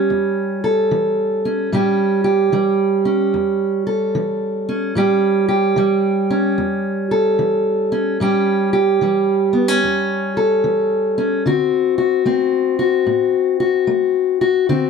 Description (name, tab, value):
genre	blues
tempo	74 BPM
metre	4/4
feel	swing 65% on 8ths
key	A mixolydian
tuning	A4 = 440 Hz
part	fingerpicked steel-string acoustic guitar	solo	0.0-14.9 s	E2 to A4	-15 LUFS	equal	none
room	light reverb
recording	dark, warm production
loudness	-15 LUFS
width	side -5 dB against mid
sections	0.0-14.9 A section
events	none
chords	0.0 A7; 11.4 D7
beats	0.09 0.90 | 1.71 2.52 3.33 4.14 | 4.95 5.76 6.57 7.38 | 8.19 9.01 9.82 10.63 | 11.44 12.26 13.07 13.89 | 14.70